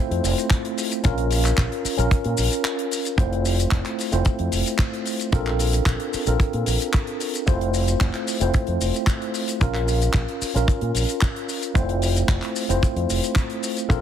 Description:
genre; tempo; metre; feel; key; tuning
nu-disco, nu disco; 112 BPM; 4/4; straight; F major; A4 = 440 Hz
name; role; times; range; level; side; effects
bright tine electric piano; accompaniment; 0.0-14.0 s; A3 to C5; -25 LUFS; equal; medium stereo tremolo, low-pass filter, tape echo
fingered electric bass with an envelope filter; bass; 0.1-14.0 s; F1 to Bb2; -23 LUFS; equal; tube saturation
damped 70s drum kit; drums; 0.1-14.0 s; handclaps, hi-hat, shaker; -28 LUFS; left 3 dB; none
kick drum; drums; 0.5-14.0 s; none; -20 LUFS; equal; none
room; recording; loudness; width
studio ambience; heavily compressed radio sound, multiband compression; -20 LUFS; side -10 dB against mid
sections
0.0-3.2 A section; 3.2-14.0 B section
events
drop 0.0-3.2; break 2.6-3.2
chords
0.0 Fmaj7; 1.0 Bbm; 3.2 Fmaj7; 5.3 Bbmaj9; 7.5 Fmaj7; 9.6 Bbm; 11.8 Fmaj7

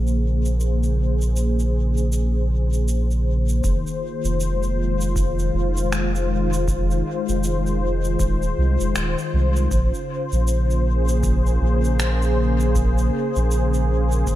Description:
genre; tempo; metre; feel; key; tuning
ambient dub; 79 BPM; 4/4; swing 60% on 16ths; Bb minor; A4 = 440 Hz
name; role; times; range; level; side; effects
warm analog pad; sustained chords; 0.0-14.4 s; Db3 to C5; -24 LUFS; left 2 dB; chorus
soft dub sub bass; bass; 0.0-14.4 s; Eb1 to C2; -20 LUFS; equal; none
electronic shaker and finger snaps; drums; 0.1-14.4 s; none; -32 LUFS; right 1 dB; overdrive, dub echo
electronic kick drum; drums; 3.6-14.4 s; none; -26 LUFS; equal; none
room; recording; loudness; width
little or no reverb; none; -18 LUFS; side -14 dB against mid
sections
0.0-3.6 A section; 3.6-14.4 B section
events
none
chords
0.0 Bbm9; 3.6 Fm7; 9.7 Bbm9

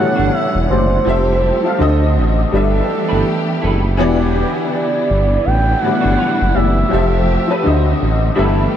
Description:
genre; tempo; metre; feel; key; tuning
R&B; 82 BPM; 4/4; swing 57% on 16ths; unclear; A4 = 441 Hz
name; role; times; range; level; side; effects
expressive synth lead; melody; 0.0-7.3 s; C5 to G5; -20 LUFS; right 2 dB; chorus
warm upright piano; accompaniment; 0.0-8.8 s; A2 to F5; -18 LUFS; left 3 dB; ensemble chorus
warm studio string section; sustained chords; 0.0-8.8 s; B2 to F#5; -23 LUFS; right 1 dB; none
mellow horn section; stabs; 0.0-8.7 s; B2 to A4; -26 LUFS; right 5 dB; ping-pong delay
electric guitar through a small old amp; second line; 0.2-8.6 s; G3 to B4; -27 LUFS; right 5 dB; ensemble chorus
smooth synth bass; bass; 0.2-8.7 s; E1 to D2; -16 LUFS; equal; none
room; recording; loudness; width
moderate huge ambient reverb, RT60 4.4 s; dreamy mix soaked in reverb; -13 LUFS; side -10 dB against mid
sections
0.0-8.8 A section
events
none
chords
0.0 A13sus4; 1.1 Fmaj9; 1.8 D7b9; 2.5 G69; 4.0 Em7; 5.4 A13sus4; 6.9 Fmaj9; 7.6 D7b9

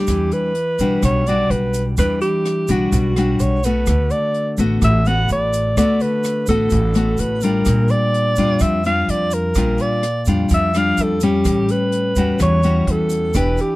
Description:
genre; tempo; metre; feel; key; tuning
bossa nova; 127 BPM; 4/4; straight; unclear; A4 = 440 Hz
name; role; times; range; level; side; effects
mellow alto saxophone; melody; 0.0-13.8 s; F#4 to F#5; -20 LUFS; right 1 dB; none
nylon-string guitar; accompaniment; 0.0-13.8 s; A2 to G4; -19 LUFS; left 2 dB; none
upright bass; bass; 0.1-13.6 s; E1 to F2; -21 LUFS; equal; none
open jazz drum kit; drums; 0.1-13.7 s; hi-hat, kick drum, rim click; -25 LUFS; equal; none
egg shaker; percussion; 0.1-13.8 s; none; -35 LUFS; right 7 dB; none
room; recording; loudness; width
light reverb; dry, close 1970s-style studio recording; -15 LUFS; side -19 dB against mid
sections
0.1-13.8 A section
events
none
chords
0.1 Em9; 3.9 D6; 7.7 Bb6; 11.4 A13

